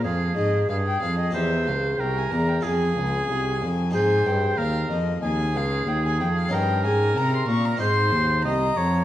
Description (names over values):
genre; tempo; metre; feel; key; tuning
classical, baroque-style sonata movement with continuo; 93 BPM; 4/4; straight; F minor; A4 = 439 Hz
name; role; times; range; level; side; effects
rich violin; melody; 0.0-9.0 s; Eb5 to Db6; -28 LUFS; left 5 dB; none
bright oboe; second line; 0.0-9.0 s; Ab4 to Eb5; -28 LUFS; right 4 dB; none
harpsichord; accompaniment; 0.0-9.0 s; C2 to C5; -26 LUFS; left 1 dB; none
rich cello; bass; 0.0-9.0 s; C2 to C3; -24 LUFS; right 1 dB; none
room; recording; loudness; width
wet recital hall reverb, RT60 1.4 s; worn, warbling old tape, cassette tape, warbly pitch drift; -20 LUFS; side -13 dB against mid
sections
0.0-9.0 A section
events
none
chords
0.0 Fm; 1.3 C7; 2.6 Fm; 3.9 Ab; 6.5 Eb7/G; 7.8 Ab